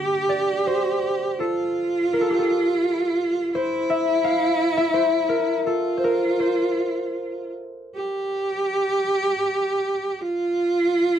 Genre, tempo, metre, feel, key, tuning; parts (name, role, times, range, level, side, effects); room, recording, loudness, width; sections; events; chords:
celtic folk, Celtic slow air; 76-86 BPM; 3/4; rubato; G dorian; A4 = 438 Hz
rich cello; second line; 0.0-11.2 s; E4 to G4; -22 LUFS; right 2 dB
concert harp; accompaniment; 0.0-8.4 s; Bb3 to F5; -24 LUFS; left 3 dB
light reverb; dry, close 1970s-style studio recording; -20 LUFS; side -9 dB against mid
0.0-11.2 A section
harp solo 0.0-11.2